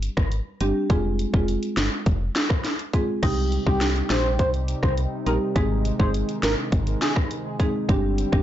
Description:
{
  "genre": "dancehall",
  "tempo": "103 BPM",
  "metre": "4/4",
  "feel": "straight",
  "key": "C minor",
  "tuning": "A4 = 440 Hz",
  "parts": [
    { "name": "woody FM bass", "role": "bass", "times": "0.0-8.4 s", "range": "F1 to C2", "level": "-25 LUFS", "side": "equal", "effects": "none" },
    { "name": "island pop drum kit", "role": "drums", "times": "0.0-8.4 s", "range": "crash cymbal, finger snaps, hi-hat, kick drum, rim click, snare drum", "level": "-24 LUFS", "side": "equal", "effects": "none" },
    { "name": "marimba with medium mallets", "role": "accompaniment", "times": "0.6-8.4 s", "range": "G3 to Ab4", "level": "-27 LUFS", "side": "right 1 dB", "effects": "none" },
    { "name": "warm analog pad", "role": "sustained chords", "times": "3.2-8.4 s", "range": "C3 to G4", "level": "-32 LUFS", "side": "left 1 dB", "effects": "wide subtle chorus, sidechain pumping" },
    { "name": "warm velvety synth lead", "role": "melody", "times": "3.7-7.1 s", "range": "G4 to C5", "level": "-29 LUFS", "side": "equal", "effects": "chorus, tape echo" }
  ],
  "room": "light reverb",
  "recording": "blown-out, overdriven recording, overdrive, nothing above 7.7 kHz",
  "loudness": "-21 LUFS",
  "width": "side -12 dB against mid",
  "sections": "0.0-3.2 A section; 3.2-8.4 B section",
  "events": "none",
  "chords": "0.0 Gsus4; 0.9 Fm; 3.2 Cm; 5.6 Ab; 7.9 Gsus4",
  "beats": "0.32 | 0.90 1.48 2.06 2.65 | 3.23 3.81 4.39 4.98 | 5.56 6.14 6.72 7.31 | 7.89"
}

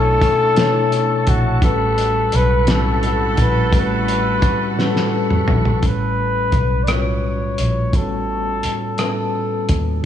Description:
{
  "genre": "slow six-eight R&B",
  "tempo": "57 BPM (dotted quarters)",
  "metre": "6/8",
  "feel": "straight",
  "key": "unclear",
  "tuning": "A4 = 440 Hz",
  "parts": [
    { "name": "breathy flugelhorn", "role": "melody", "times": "0.0-9.7 s", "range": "F#4 to D5", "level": "-20 LUFS", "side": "left 2 dB", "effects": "diffuse ambient delay" },
    { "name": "mellow tine electric piano", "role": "accompaniment", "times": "0.0-10.1 s", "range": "A2 to C#5", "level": "-22 LUFS", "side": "left 1 dB", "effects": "medium stereo tremolo" },
    { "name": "tonewheel organ", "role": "sustained chords", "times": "0.0-5.8 s", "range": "G3 to C#6", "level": "-28 LUFS", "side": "left 1 dB", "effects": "chorus vibrato, slow rotary speaker" },
    { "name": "warm horn section", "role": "stabs", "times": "0.0-5.4 s", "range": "F#3 to A4", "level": "-28 LUFS", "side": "right 2 dB", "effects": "diffuse ambient delay" },
    { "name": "vintage muted fingered electric bass", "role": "bass", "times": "0.0-10.0 s", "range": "A1 to D#2", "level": "-20 LUFS", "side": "equal", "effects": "none" },
    { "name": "cloth-damped thuddy drum kit", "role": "drums", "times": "0.2-9.9 s", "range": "hi-hat, kick drum, rim click, snare drum, toms", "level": "-20 LUFS", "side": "equal", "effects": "vintage 12-bit sampler grit" }
  ],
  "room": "moderate plate reverb, RT60 3.0 s",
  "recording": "dreamy mix soaked in reverb",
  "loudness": "-15 LUFS",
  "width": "side -10 dB against mid",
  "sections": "0.0-5.8 A section; 5.8-10.1 B section",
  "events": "drum fill 4.8-5.8",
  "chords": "0.0 Bm11; 1.6 A13; 5.8 A9",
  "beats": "0.57 | 1.62 2.67 | 3.73 4.78 | 5.83 6.88 | 7.94 8.99 | 10.04"
}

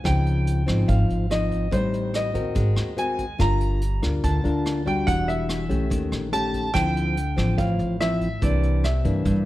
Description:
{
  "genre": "bossa nova",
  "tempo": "143 BPM",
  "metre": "4/4",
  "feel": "straight",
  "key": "unclear",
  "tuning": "A4 = 436 Hz",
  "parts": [
    { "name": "warm grand piano", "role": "melody", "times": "0.0-9.5 s", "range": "C5 to Bb5", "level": "-28 LUFS", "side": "right 1 dB", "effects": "none" },
    { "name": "nylon-string guitar", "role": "accompaniment", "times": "0.0-9.5 s", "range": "G2 to Bb4", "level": "-25 LUFS", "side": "left 2 dB", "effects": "none" },
    { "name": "upright bass", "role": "bass", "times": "0.1-9.5 s", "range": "E1 to G2", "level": "-24 LUFS", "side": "equal", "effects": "none" },
    { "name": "vintage brush drum kit", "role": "drums", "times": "0.1-9.4 s", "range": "hi-hat, kick drum, rim click", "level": "-30 LUFS", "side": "equal", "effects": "none" }
  ],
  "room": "little or no reverb",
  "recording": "faint mains hum",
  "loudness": "-20 LUFS",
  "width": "side -16 dB against mid",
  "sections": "0.0-9.5 A section",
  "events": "none",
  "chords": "0.0 Dbmaj9; 1.7 Am7b5; 2.6 Ab9; 3.4 Gm7; 5.1 Em9; 5.9 Eb7#11; 6.7 Dm9; 8.4 C9",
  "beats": "| 0.04 0.46 0.88 1.30 | 1.72 2.14 2.56 2.98 | 3.40 3.81 4.23 4.65 | 5.07 5.49 5.91 6.33 | 6.74 7.16 7.58 8.00 | 8.42 8.84 9.26"
}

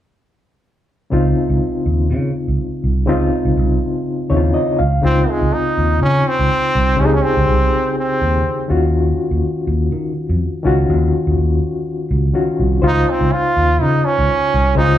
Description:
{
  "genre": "disco",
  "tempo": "123 BPM",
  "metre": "4/4",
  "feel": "straight",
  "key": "Db major",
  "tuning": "A4 = 440 Hz",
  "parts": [
    { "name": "overdriven reed electric piano", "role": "accompaniment", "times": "1.1-15.0 s", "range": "Db3 to F5", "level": "-19 LUFS", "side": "left 2 dB", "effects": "medium tremolo" },
    { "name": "fingered electric bass", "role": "bass", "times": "1.1-15.0 s", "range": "C2 to Eb3", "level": "-17 LUFS", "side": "equal", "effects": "none" },
    { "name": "brilliant trombone", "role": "melody", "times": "5.0-8.7, 12.9-15.0 s", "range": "Ab3 to F4", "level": "-17 LUFS", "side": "right 1 dB", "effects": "none" }
  ],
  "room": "moderate large studio reverb, RT60 0.8 s",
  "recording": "band playing live in one room",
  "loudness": "-14 LUFS",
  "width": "side -12 dB against mid",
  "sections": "1.1-5.0 A section; 5.0-15.0 B section",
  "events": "reed electric piano fill 4.1-5.0",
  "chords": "1.1 Dbmaj9; 4.8 Db; 5.0 Dbmaj9; 8.7 Ebm9; 12.8 Dbmaj9",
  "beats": "| 1.12 1.61 2.10 2.59 | 3.08 3.57 4.06 4.54 | 5.03 5.52 6.01 6.50 | 6.99 7.47 7.96 8.45 | 8.94 9.42 9.91 10.40 | 10.89 11.37 11.86 12.35 | 12.83 13.32 13.81 14.29 | 14.78"
}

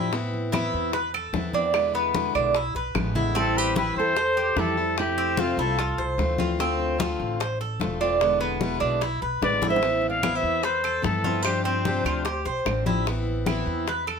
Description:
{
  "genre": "latin, Cuban son and guajira",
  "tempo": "148 BPM",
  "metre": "4/4",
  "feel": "straight",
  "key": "A minor",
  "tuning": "A4 = 440 Hz",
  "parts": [
    { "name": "picked plugged-in steel-string acoustic guitar", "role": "accompaniment", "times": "0.0-13.9 s", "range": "B2 to G4", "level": "-30 LUFS", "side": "left 4 dB", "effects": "none" },
    { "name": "Cuban tres", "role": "arpeggios", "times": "0.0-14.2 s", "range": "B3 to C5", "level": "-27 LUFS", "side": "right 2 dB", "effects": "none" },
    { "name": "upright bass", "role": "bass", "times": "0.0-14.2 s", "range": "E1 to A2", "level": "-31 LUFS", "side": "right 1 dB", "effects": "none" },
    { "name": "bongos", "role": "percussion", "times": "0.1-14.1 s", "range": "none", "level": "-32 LUFS", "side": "left 7 dB", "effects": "none" },
    { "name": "congas", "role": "percussion", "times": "0.1-14.2 s", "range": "none", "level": "-32 LUFS", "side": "left 3 dB", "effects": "none" },
    { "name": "claves", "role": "percussion", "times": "0.5-3.2, 10.2-14.2 s", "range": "none", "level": "-33 LUFS", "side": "right 9 dB", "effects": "none" },
    { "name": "breathy trumpet", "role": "melody", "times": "3.4-6.2, 9.4-12.4 s", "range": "F4 to F5", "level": "-26 LUFS", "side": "left 2 dB", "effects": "none" },
    { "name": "nylon-string guitar", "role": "second line", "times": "3.4-6.2, 9.4-12.4 s", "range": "C4 to D5", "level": "-30 LUFS", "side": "right 7 dB", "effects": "none" }
  ],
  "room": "light reverb",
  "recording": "none",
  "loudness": "-22 LUFS",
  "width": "side -6 dB against mid",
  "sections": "0.0-3.4 A section; 3.4-14.2 A section",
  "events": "drum fill 3.0-3.4, 9.6",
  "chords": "0.1 Amadd9; 1.7 E7; 3.4 Am7; 5.0 Fmaj7; 6.6 Dm7; 8.2 E7; 9.8 Amadd9; 11.4 G7sus4; 13.1 Amadd9",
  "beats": "| 0.13 0.53 0.94 1.34 | 1.74 2.15 2.55 2.96 | 3.36 3.76 4.17 4.57 | 4.98 5.38 5.78 6.19 | 6.59 7.00 7.40 7.81 | 8.21 8.61 9.02 9.42 | 9.83 10.23 10.64 11.04 | 11.45 11.85 12.26 12.66 | 13.06 13.47 13.87"
}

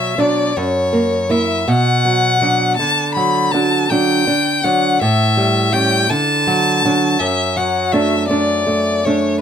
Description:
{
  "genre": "romantic duo for violin and classical guitar",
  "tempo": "54 BPM (dotted quarters)",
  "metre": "6/8",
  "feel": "rubato",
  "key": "unclear",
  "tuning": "A4 = 439 Hz",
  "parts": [
    { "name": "clear violin", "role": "melody", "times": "0.0-9.4 s", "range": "C#5 to B5", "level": "-16 LUFS", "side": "left 4 dB", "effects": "none" },
    { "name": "nylon-string guitar", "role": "accompaniment", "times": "0.0-9.4 s", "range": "F#2 to E4", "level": "-16 LUFS", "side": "right 2 dB", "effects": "none" }
  ],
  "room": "light reverb",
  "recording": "none",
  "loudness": "-13 LUFS",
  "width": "side -8 dB against mid",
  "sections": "0.0-9.4 A section",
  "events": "none",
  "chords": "0.0 Bm; 0.6 F#7; 1.7 Bm; 2.8 D; 5.0 A7; 6.1 D; 7.2 D/F#",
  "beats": "| 0.56 1.68 | 2.78 3.90 | 5.02 6.09 | 7.19 8.29"
}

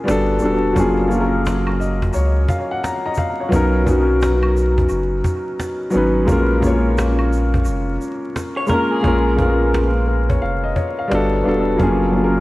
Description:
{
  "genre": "lo-fi hip hop",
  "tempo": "87 BPM",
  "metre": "4/4",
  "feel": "swing 64% on 16ths",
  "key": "Bb phrygian",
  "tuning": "A4 = 440 Hz",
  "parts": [
    { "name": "warm upright piano", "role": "accompaniment", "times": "0.0-12.4 s", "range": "Gb3 to Bb5", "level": "-17 LUFS", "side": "left 1 dB", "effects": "cassette tape, analog delay" },
    { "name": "warm sub bass", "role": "bass", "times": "0.1-12.4 s", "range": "E1 to Db2", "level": "-20 LUFS", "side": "equal", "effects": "none" },
    { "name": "cajon", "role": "drums", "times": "0.1-12.2 s", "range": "none", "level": "-23 LUFS", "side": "equal", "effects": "none" },
    { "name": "egg shaker and woodblock", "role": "percussion", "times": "0.1-8.9 s", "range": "none", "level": "-36 LUFS", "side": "right 1 dB", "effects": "analog delay" },
    { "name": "electric guitar through a small old amp", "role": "second line", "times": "8.6-9.2 s", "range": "Ab4 to Db5", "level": "-26 LUFS", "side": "right 1 dB", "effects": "analog delay" }
  ],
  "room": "light reverb, small room ambience",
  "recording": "echo-heavy mix, vinyl crackle",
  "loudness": "-15 LUFS",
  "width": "side -18 dB against mid",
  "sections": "0.0-9.0 A section; 9.0-12.4 A section",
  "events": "upright piano fill 1.5-3.5",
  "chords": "0.1 Gmaj7; 0.8 Gbmaj7; 3.5 Bmaj7; 6.3 Bbm7; 11.1 Gmaj7; 11.8 Gbmaj7",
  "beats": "0.07 | 0.76 1.45 2.14 2.83 | 3.52 4.21 4.90 5.59 | 6.28 6.97 7.66 8.35 | 9.04 9.73 10.42 11.11 | 11.80"
}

